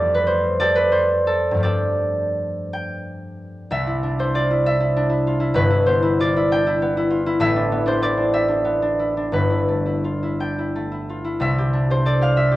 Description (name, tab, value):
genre	classical, solo harp piece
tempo	54-68 BPM (dotted quarters)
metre	6/8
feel	rubato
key	C major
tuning	A4 = 442 Hz
part	concert harp	solo	0.0-12.6 s	G1 to G5	-18 LUFS	equal	none
room	light reverb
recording	worn, warbling old tape, cassette tape, warbly pitch drift, nothing above 10.7 kHz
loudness	-18 LUFS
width	side -16 dB against mid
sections	0.0-3.7 A section; 3.7-12.6 B section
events	none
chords	0.0 F69; 1.6 G9sus4; 3.7 Cadd9; 5.5 G6; 7.4 Am11; 9.3 G13; 11.4 Cadd9